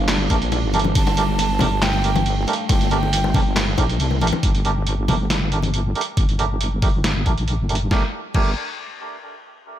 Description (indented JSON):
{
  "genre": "deep dubstep",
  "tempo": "138 BPM",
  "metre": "4/4",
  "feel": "half-time",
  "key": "G minor",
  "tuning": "A4 = 440 Hz",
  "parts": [
    { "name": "breathy bright long shakuhachi", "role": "melody", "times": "0.0-4.0 s", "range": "F5 to A5", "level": "-28 LUFS", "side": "right 3 dB", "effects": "dub echo" },
    { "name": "deep dark ambient pad", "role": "sustained chords", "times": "0.0-4.5 s", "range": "G3 to D4", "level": "-30 LUFS", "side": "right 1 dB", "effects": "chorus, built-in reverb" },
    { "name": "wobble bass", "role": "bass", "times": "0.0-8.5 s", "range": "G1 to C2", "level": "-21 LUFS", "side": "equal", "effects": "chorus" },
    { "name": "trip hop sampler-style drum kit", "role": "drums", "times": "0.1-8.4 s", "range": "crash cymbal, handclaps, hi-hat, snare drum", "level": "-25 LUFS", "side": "right 1 dB", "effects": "none" },
    { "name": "melodica", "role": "stabs", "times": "0.3-8.5 s", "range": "A3 to Bb4", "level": "-27 LUFS", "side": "right 4 dB", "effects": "low-pass filter, dub echo" },
    { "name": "electronic kick drum", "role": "drums", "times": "0.3-8.4 s", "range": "none", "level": "-19 LUFS", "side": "equal", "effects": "overdrive" },
    { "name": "bongos and congas", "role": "percussion", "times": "0.3-5.7 s", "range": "none", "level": "-26 LUFS", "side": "left 4 dB", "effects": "dub echo" }
  ],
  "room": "little or no reverb",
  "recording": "none",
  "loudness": "-17 LUFS",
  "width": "side -11 dB against mid",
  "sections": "0.0-4.4 A section; 4.4-7.9 B section; 7.9-9.7 C section",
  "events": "drop 0.0-4.4; filter sweep on wobble bass 4.4-7.9; filter sweep on melodica 4.4-7.9",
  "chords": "0.0 Gmadd9"
}